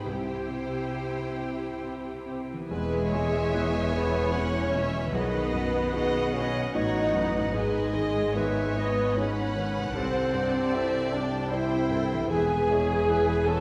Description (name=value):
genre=cinematic, emotional film score for orchestra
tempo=66-78 BPM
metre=3/4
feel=rubato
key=unclear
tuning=A4 = 439 Hz
part: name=rich studio viola section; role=accompaniment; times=0.0-13.6 s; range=G#3 to A4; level=-35 LUFS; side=equal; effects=none
part: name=warm grand piano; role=accompaniment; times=0.0-13.6 s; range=B1 to G#4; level=-35 LUFS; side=equal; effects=none
part: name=concert harp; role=arpeggios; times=0.0-13.6 s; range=G#2 to C5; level=-42 LUFS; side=equal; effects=none
part: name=rich studio violin section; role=second line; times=0.1-13.6 s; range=G#4 to G#5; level=-37 LUFS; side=equal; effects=none
part: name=clear studio cello section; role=bass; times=0.1-13.6 s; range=C2 to C3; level=-36 LUFS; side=equal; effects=none
part: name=clear French horn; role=melody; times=2.7-13.6 s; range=G#3 to A4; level=-35 LUFS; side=equal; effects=none
part: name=warm studio violin section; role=melody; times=2.7-13.6 s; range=E5 to B5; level=-45 LUFS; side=equal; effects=none
part: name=large flute ensemble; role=second line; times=2.7-13.6 s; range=G#4 to A5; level=-35 LUFS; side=equal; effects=none
part: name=warm studio double bass section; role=bass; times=2.7-13.6 s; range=E1 to C2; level=-37 LUFS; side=equal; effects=none
part: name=mellow clarinet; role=second line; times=3.5-13.6 s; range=E4 to D#5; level=-38 LUFS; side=equal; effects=none
room=wet scoring stage reverb, RT60 1.7 s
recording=heard from further back in the room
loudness=-27 LUFS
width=mono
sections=0.0-2.7 A section; 2.7-13.6 B section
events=none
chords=0.1 C; 2.7 E; 5.1 B; 7.5 G#m; 9.9 C; 12.3 E